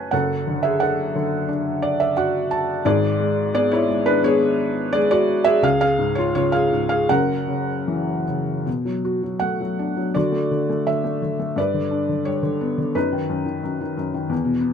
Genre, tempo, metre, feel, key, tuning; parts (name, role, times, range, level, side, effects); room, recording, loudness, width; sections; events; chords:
classical, lyrical solo piano; 74-92 BPM; 4/4; rubato; F# minor, B minor from 8.7 s; A4 = 440 Hz
felt-muted upright piano; solo; 0.0-14.7 s; F#1 to A5; -19 LUFS; equal
light reverb; close, detailed microphones; -19 LUFS; side -7 dB against mid
0.0-8.7 A section; 8.7-14.7 B section
felt piano fill 1.5-2.8
0.1 Dadd9/F#; 2.8 G#dim; 5.6 C#; 7.1 F#7; 8.7 Bm7; 10.2 D; 11.6 G; 13.0 B/F#